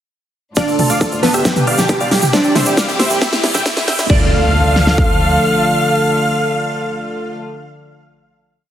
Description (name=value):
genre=uplifting trance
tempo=136 BPM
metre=4/4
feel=straight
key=D dorian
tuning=A4 = 440 Hz
part: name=big supersaw lead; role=melody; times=0.6-7.4 s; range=E4 to G5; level=-18 LUFS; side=right 1 dB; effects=sidechain pumping, digital delay
part: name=glassy wavetable pluck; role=second line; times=0.6-7.4 s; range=B3 to D5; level=-19 LUFS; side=right 1 dB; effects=chorus, digital delay
part: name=warm studio string section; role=sustained chords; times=0.6-7.4 s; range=A2 to A4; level=-20 LUFS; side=left 1 dB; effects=sidechain pumping
part: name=big-room dance drum kit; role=drums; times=0.6-5.1 s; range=kick drum, snare drum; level=-16 LUFS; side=equal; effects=high-pass filter on kick, small room ambience, high-pass filter on snare
part: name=big-room dance drum kit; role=drums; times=0.6-4.2 s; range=crash cymbal, hi-hat, snare drum, toms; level=-18 LUFS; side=equal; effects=small room ambience
part: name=tube shaker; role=percussion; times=0.6-4.1 s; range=none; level=-25 LUFS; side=right 4 dB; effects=none
part: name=riser and impact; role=sound effects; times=1.5-7.4 s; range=none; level=-25 LUFS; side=equal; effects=none
part: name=tight sequencer bass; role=bass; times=0.8-5.4 s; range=G1 to E2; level=-21 LUFS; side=equal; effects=none
room=moderate lush hall reverb, RT60 1.8 s, digital ambience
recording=heavily compressed radio sound, high-pass filter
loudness=-12 LUFS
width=side -10 dB against mid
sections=0.6-4.1 build; 4.1-7.6 final chord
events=build-up 0.6-4.1; drum fill 0.6-4.1; filter sweep 0.6-4.1; riser 1.5-4.1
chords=0.6 Dm; 1.4 G; 2.3 C; 3.2 Em; 4.1 Dm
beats=| 0.57 1.01 1.45 1.89 | 2.33 2.77 3.21 3.66 | 4.10 4.54 4.98 5.42 | 5.86 6.30 6.74 7.18